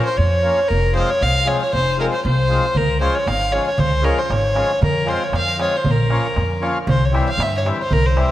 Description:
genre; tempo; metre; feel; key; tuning
balkan folk, Balkan wedding band; 116 BPM; 2/4; straight; unclear; A4 = 439 Hz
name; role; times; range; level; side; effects
rich fiddle; melody; 0.0-8.3 s; Bb4 to F5; -19 LUFS; equal; analog delay
accordion; accompaniment; 0.0-8.3 s; E3 to F4; -24 LUFS; left 2 dB; none
upright bass; bass; 0.2-8.2 s; F1 to G2; -20 LUFS; equal; none
darbuka; percussion; 2.8-8.3 s; none; -24 LUFS; right 1 dB; none
room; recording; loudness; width
moderate concert hall reverb, RT60 1.9 s; none; -16 LUFS; side -14 dB against mid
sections
0.0-6.9 A section; 6.9-8.3 B section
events
none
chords
0.0 Bbm; 0.7 Fm; 2.8 Db; 4.8 Fm; 5.8 Bbm; 6.9 C

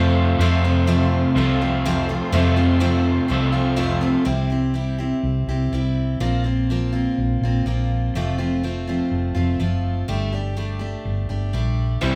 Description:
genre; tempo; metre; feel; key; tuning
rock; 124 BPM; 4/4; straight; unclear; A4 = 440 Hz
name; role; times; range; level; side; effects
picked steel-string acoustic guitar; accompaniment; 0.0-12.2 s; F2 to G4; -25 LUFS; equal; none
mellow tonewheel organ; sustained chords; 0.0-4.2 s; A4 to C6; -36 LUFS; equal; none
overdriven electric guitar; riff; 0.0-4.3, 12.0-12.2 s; F2 to F4; -26 LUFS; equal; none
hollow-body short-scale fingered electric bass; bass; 0.0-12.2 s; F1 to F2; -24 LUFS; equal; none
room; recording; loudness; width
moderate large studio reverb, RT60 1.3 s; band playing live in one room; -21 LUFS; mono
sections
0.4-4.3 A section; 4.3-12.2 B section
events
none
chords
0.4 F; 4.3 C; 6.2 Bbsus2; 8.1 F; 10.1 Gsus2

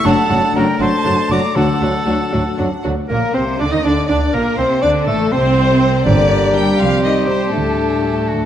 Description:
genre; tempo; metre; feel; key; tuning
quick classical-period movement for symphony orchestra; 80 BPM (dotted quarters); 6/8; straight; unclear; A4 = 440 Hz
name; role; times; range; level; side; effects
bright oboe; second line; 0.0-8.5 s; F#4 to Eb5; -25 LUFS; right 1 dB; none
bright silver concert flute; second line; 0.0-8.5 s; A4 to D6; -24 LUFS; equal; none
rich chamber violin section; second line; 0.0-8.2 s; A3 to Bb5; -26 LUFS; left 2 dB; none
dark French horn section; sustained chords; 0.0-8.5 s; F#3 to Eb4; -23 LUFS; left 4 dB; none
rich chamber violin section; melody; 0.1-8.5 s; F#4 to G5; -22 LUFS; left 3 dB; none
mellow clarinet; second line; 0.1-8.5 s; A3 to Eb4; -24 LUFS; left 1 dB; none
rich studio viola section; accompaniment; 0.1-8.2 s; G3 to Eb4; -25 LUFS; right 1 dB; none
warm bassoon; accompaniment; 0.1-8.5 s; F#3 to Eb4; -21 LUFS; right 1 dB; none
clear chamber double bass section; bass; 0.1-8.5 s; F#1 to Eb2; -21 LUFS; right 3 dB; none
rich chamber cello section; bass; 0.1-8.5 s; D2 to G3; -22 LUFS; right 1 dB; none
timpani; percussion; 1.6-2.3 s; D3; -23 LUFS; left 2 dB; none
room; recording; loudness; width
wet scoring stage reverb, RT60 1.9 s; none; -13 LUFS; side -10 dB against mid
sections
0.0-3.1 A section; 3.1-8.5 B section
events
none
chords
0.1 D/F#; 1.6 D; 3.1 Cm9/Bb; 4.6 D5; 6.0 Gm; 6.8 Cm; 7.5 Dsus4

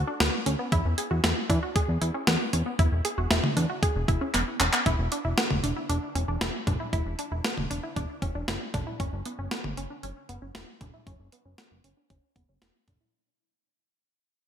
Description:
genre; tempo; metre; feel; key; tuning
synth-pop; 116 BPM; 4/4; straight; unclear; A4 = 441 Hz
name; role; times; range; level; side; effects
wide unison pluck; arpeggios; 0.0-13.1 s; B3 to G#4; -32 LUFS; right 1 dB; low-pass filter, ping-pong delay
fat analog bass; bass; 0.0-13.0 s; E1 to E3; -29 LUFS; equal; none
clean 12-bit digital drum machine; drums; 0.2-13.0 s; handclaps, hi-hat, kick drum, snare drum, toms; -27 LUFS; equal; gated reverb
room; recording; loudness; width
moderate plate reverb, RT60 2.4 s; bright 1980s-style digital production; -25 LUFS; side -9 dB against mid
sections
0.0-4.9 A section; 4.9-13.1 B section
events
drum fill 4.3-4.9; fade-out 4.9-13.1; filter sweep on synth arpeggio sound 4.9-13.1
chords
0.0 N.C.; 0.7 E7(no3); 9.0 F#5

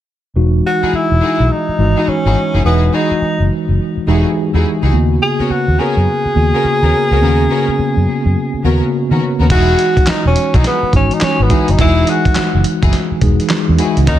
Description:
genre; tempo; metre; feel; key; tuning
R&B, new jack swing; 105 BPM; 4/4; swing 64% on 16ths; unclear; A4 = 438 Hz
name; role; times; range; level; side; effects
mellow tine electric piano; accompaniment; 0.4-14.2 s; C#3 to G#4; -17 LUFS; equal; medium stereo tremolo
vintage muted fingered electric bass; bass; 0.4-14.2 s; E1 to D#3; -14 LUFS; equal; none
mellow tenor saxophone; melody; 0.7-14.2 s; B3 to G#4; -17 LUFS; equal; ping-pong delay
rich studio string section; stabs; 0.8-14.2 s; B3 to A#4; -23 LUFS; left 2 dB; none
dusty soul sampler-style drum kit; drums; 9.5-14.2 s; crash cymbal, handclaps, hi-hat, kick drum, snare drum; -16 LUFS; equal; vintage 12-bit sampler grit
room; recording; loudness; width
little or no reverb; none; -11 LUFS; side -12 dB against mid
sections
0.4-9.5 A section; 9.5-14.2 B section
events
none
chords
0.4 Emaj9; 4.9 G#m11; 9.5 Emaj9

